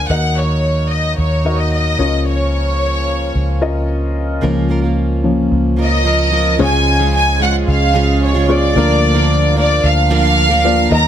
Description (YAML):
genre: piano-driven pop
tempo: 111 BPM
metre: 4/4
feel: straight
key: unclear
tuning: A4 = 440 Hz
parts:
  - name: warm studio violin section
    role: melody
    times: 0.0-11.1 s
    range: Db5 to Bb5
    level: -16 LUFS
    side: equal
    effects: none
  - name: dark upright piano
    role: accompaniment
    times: 0.0-11.1 s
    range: Db3 to F5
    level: -20 LUFS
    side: left 3 dB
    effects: none
  - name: pedal harmonium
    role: sustained chords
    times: 0.0-11.1 s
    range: F3 to Eb4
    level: -28 LUFS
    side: right 2 dB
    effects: none
  - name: vintage muted fingered electric bass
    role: bass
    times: 0.0-11.1 s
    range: Db2 to Eb2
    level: -16 LUFS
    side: equal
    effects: none
  - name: fingerpicked plugged-in steel-string acoustic guitar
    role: riff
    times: 4.4-11.1 s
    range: Db3 to Bb4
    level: -20 LUFS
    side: right 6 dB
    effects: none
room: light reverb, small room ambience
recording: none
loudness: -12 LUFS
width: side -10 dB against mid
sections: 0.0-4.4 A section; 4.4-6.6 B section; 6.6-11.1 C section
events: upright piano solo 4.4-6.6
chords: 0.1 Ebm; 2.0 Bbm/Db; 6.6 Db; 8.8 Bb/D